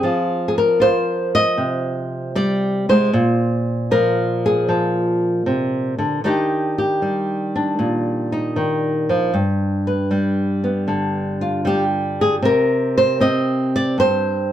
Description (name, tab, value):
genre	solo jazz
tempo	78 BPM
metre	4/4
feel	swing 69% on 8ths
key	C minor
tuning	A4 = 441 Hz
part	flamenco guitar	solo	0.0-14.5 s	G2 to Eb5	-17 LUFS	equal	none
room	wet studio reverb, RT60 0.5 s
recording	band playing live in one room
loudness	-17 LUFS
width	side -11 dB against mid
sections	0.0-14.5 A section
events	none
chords	0.0 Fm7; 3.1 Bb7(no3); 6.2 Ebmaj7; 9.3 G7; 12.4 C5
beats	| 0.02 0.80 1.57 2.35 | 3.12 3.90 4.68 5.45 | 6.23 7.00 7.78 8.55 | 9.32 10.10 10.87 11.65 | 12.42 13.19 13.97